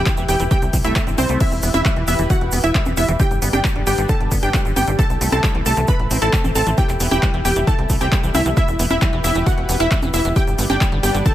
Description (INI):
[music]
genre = uplifting trance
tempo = 134 BPM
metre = 4/4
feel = straight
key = E minor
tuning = A4 = 440 Hz
[part]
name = wide unison pluck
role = melody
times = 0.0-11.3 s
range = C4 to B5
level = -22 LUFS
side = equal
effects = sidechain pumping, ping-pong delay
[part]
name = wide unison pluck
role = second line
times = 0.0-11.3 s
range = C5 to B5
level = -28 LUFS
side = right 1 dB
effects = sidechain pumping, digital delay
[part]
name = lush unison pad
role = sustained chords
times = 0.0-11.3 s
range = C3 to B4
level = -28 LUFS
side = left 1 dB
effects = chorus, sidechain pumping
[part]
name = tight sequencer bass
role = bass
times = 0.0-11.2 s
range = E1 to C2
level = -21 LUFS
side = equal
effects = sidechain pumping
[part]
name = liquid acid bass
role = arpeggios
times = 0.1-11.3 s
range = D3 to E4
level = -27 LUFS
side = right 2 dB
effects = chorus, sidechain pumping, digital delay
[part]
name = electronic kick drum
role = drums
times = 0.1-11.3 s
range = none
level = -18 LUFS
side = equal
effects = overdrive
[part]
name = punchy analog drum machine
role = drums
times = 0.1-11.3 s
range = congas, crash cymbal, handclaps, hi-hat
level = -25 LUFS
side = equal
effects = overdrive, sidechain pumping on hats, sidechain pumping on perc, sidechain pumping on cymbals
[part]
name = egg shaker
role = percussion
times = 0.1-11.3 s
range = none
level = -31 LUFS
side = right 3 dB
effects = none
[sound]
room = digital ambience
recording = none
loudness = -15 LUFS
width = side -13 dB against mid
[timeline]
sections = 0.0-11.3 A section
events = none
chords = 0.0 Em; 0.5 C6; 1.4 Em; 3.2 G; 5.0 C6; 5.9 Am; 6.8 Em; 7.7 C6; 8.6 Em; 10.4 G